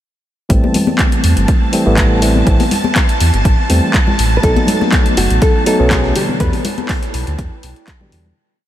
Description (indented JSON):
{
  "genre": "deep house",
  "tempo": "122 BPM",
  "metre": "4/4",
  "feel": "swing 53% on 16ths",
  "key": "A minor",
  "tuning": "A4 = 438 Hz",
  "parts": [
    { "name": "bright tine electric piano", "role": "stabs", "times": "0.5-8.3 s", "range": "B2 to D#4", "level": "-18 LUFS", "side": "equal", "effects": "sidechain pumping, ping-pong delay" },
    { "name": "sub bass with octave", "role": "bass", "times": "0.5-8.3 s", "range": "F#1 to E2", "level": "-15 LUFS", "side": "equal", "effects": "sidechain pumping" },
    { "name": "electronic kick drum", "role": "drums", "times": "0.5-8.0 s", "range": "none", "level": "-14 LUFS", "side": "equal", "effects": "overdrive" },
    { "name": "punchy analog drum machine", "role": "drums", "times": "0.5-8.2 s", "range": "handclaps, hi-hat", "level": "-20 LUFS", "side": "left 1 dB", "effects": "overdrive" },
    { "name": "string machine, violins", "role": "texture", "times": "0.5-8.4 s", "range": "A5", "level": "-24 LUFS", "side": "equal", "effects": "ensemble chorus, sidechain pumping" },
    { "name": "warbly tape-like pad", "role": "texture", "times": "2.7-8.4 s", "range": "C4 to A5", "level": "-33 LUFS", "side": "left 1 dB", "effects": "none" },
    { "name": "congas", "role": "percussion", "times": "0.6-8.3 s", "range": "none", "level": "-22 LUFS", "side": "left 4 dB", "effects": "none" },
    { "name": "hollow-body jazz guitar", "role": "melody", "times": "4.4-8.1 s", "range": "F#4 to B4", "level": "-19 LUFS", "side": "equal", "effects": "diffuse ambient delay" },
    { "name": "breakbeat sampler-style drum kit", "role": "drums", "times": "4.4-8.2 s", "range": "hi-hat, snare drum", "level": "-33 LUFS", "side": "right 2 dB", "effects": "none" }
  ],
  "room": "light reverb, digital ambience",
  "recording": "none",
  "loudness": "-11 LUFS",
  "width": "side -12 dB against mid",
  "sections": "0.5-8.4 groove",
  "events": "fade-out 5.7-8.4",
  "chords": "0.5 Am7; 4.4 B7; 6.2 Em7"
}